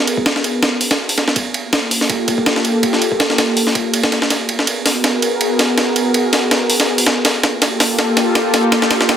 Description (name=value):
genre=drum and bass, jungle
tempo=163 BPM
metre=4/4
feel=swing 55% on 16ths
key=unclear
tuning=A4 = 440 Hz
part: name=lush unison pad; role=sustained chords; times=0.0-9.2 s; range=Bb3 to A#4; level=-17 LUFS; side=equal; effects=chorus
part: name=breakbeat sampler-style drum kit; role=drums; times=0.1-9.2 s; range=hi-hat, kick drum, ride cymbal, snare drum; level=-15 LUFS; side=equal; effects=high-pass filter on cymbals, studio reverb, high-pass filter on kick, high-pass filter on snare, high-pass filter on hats
room=wet plate reverb, RT60 1.7 s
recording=dense, heavily limited modern master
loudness=-13 LUFS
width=side -9 dB against mid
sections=0.0-9.2 A section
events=build-up 0.0-9.2; filter sweep on analog synth pad 0.0-9.2; drum fill 4.3-9.2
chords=0.0 G#m9; 1.4 Gm9; 4.3 G#m9; 7.2 Gm9